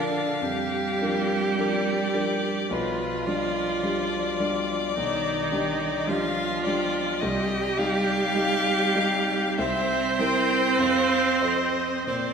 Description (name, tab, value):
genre	classical, slow romantic movement for piano quartet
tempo	44-54 BPM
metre	4/4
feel	rubato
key	Bb major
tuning	A4 = 440 Hz
part	rich violin	melody	0.0-12.3 s	B4 to G5	-29 LUFS	left 6 dB	none
part	rich cello	second line	0.0-12.3 s	D3 to C4	-29 LUFS	right 4 dB	none
part	clear viola	accompaniment	0.0-12.3 s	D4 to C5	-27 LUFS	right 2 dB	none
part	dark grand piano	accompaniment	0.0-12.3 s	B1 to Bb4	-29 LUFS	left 1 dB	none
room	wet scoring stage reverb, RT60 2.0 s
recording	none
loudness	-22 LUFS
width	side -6 dB against mid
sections	0.0-12.3 A section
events	none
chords	0.0 Bb; 2.7 G7/B; 7.2 Cm; 9.6 C7; 10.8 F